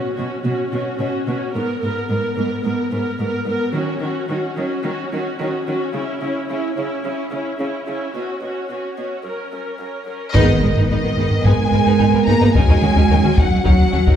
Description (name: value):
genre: cinematic, hybrid orchestral and electronic film score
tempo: 109 BPM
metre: 4/4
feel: straight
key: unclear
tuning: A4 = 440 Hz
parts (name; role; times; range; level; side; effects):
- warm symphonic viola section; accompaniment; 0.0-14.1 s; F#3 to A#4; -23 LUFS; equal; none
- rich symphonic cello section; bass; 0.2-14.2 s; F#2 to A#3; -22 LUFS; right 3 dB; none
- rich studio violin section; melody; 10.3-14.2 s; D#5 to A#5; -22 LUFS; left 5 dB; none
- rich symphonic violin section; second line; 10.3-14.1 s; B3 to B4; -25 LUFS; left 4 dB; none
- dark French horn section; sustained chords; 10.3-14.2 s; B3 to A#4; -23 LUFS; left 1 dB; none
- rubbery square bass; riff; 10.3-14.2 s; D#2 to G#3; -18 LUFS; equal; none
- dark symphonic double bass section; bass; 10.3-14.1 s; G#1 to D#2; -21 LUFS; right 1 dB; none
- taiko ensemble; drums; 10.3-14.2 s; none; -19 LUFS; left 2 dB; none
- impact; sound effects; 10.3-12.6 s; none; -26 LUFS; left 1 dB; none
room: wet scoring stage reverb, RT60 1.8 s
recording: heard from further back in the room, high-pass filter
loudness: -16 LUFS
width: side -9 dB against mid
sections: 0.0-10.4 A section; 10.4-14.2 B section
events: build-up 0.0-10.4; filter sweep 0.0-10.4; band accent 10.4-10.9; impact 10.4-12.6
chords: 0.0 Bsus2; 1.5 G#madd9; 3.8 D#m7; 6.0 C#m; 8.2 Bsus2; 9.3 F#; 10.4 G#madd9; 12.6 D#m7